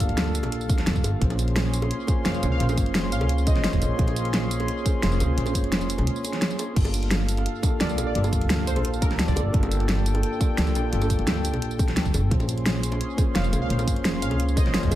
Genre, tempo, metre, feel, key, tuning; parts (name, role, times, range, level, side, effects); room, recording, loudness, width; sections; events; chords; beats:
liquid drum and bass; 173 BPM; 4/4; straight; A4 = 440 Hz
bell-like tine electric piano; accompaniment; 0.0-15.0 s; Bb3 to C5; -30 LUFS; right 1 dB; medium stereo tremolo, dub echo
warm analog pad; sustained chords; 0.0-15.0 s; Db4 to C6; -33 LUFS; left 1 dB; chorus, sidechain pumping
upright bass; bass; 0.0-15.0 s; F1 to D2; -25 LUFS; equal; tube saturation
electronic kick drum; drums; 0.0-14.9 s; -23 LUFS; equal
pop drum kit; drums; 0.0-15.0 s; crash cymbal, hi-hat, snare drum, tambourine; -28 LUFS; equal
bongos; percussion; 0.2-15.0 s; -36 LUFS; equal
plucky unison lead; melody; 2.3-4.0, 7.8-9.5, 13.4-15.0 s; Bb4 to F5; -34 LUFS; equal; wide subtle chorus, analog delay
light reverb, digital ambience; echo-heavy mix; -21 LUFS; side -14 dB against mid
0.0-15.0 A section
break 6.1-6.8
0.0 Gm9; 1.2 Bbm9; 6.8 Gm9; 12.3 Bbm9
0.18 0.52 0.87 | 1.22 1.56 1.91 2.26 | 2.60 2.95 3.30 3.64 | 3.99 4.34 4.68 5.03 | 5.38 5.72 6.07 6.42 | 6.76 7.11 7.46 7.81 | 8.15 8.50 8.85 9.19 | 9.54 9.89 10.23 10.58 | 10.93 11.27 11.62 11.97 | 12.31 12.66 13.01 13.36 | 13.70 14.05 14.39 14.74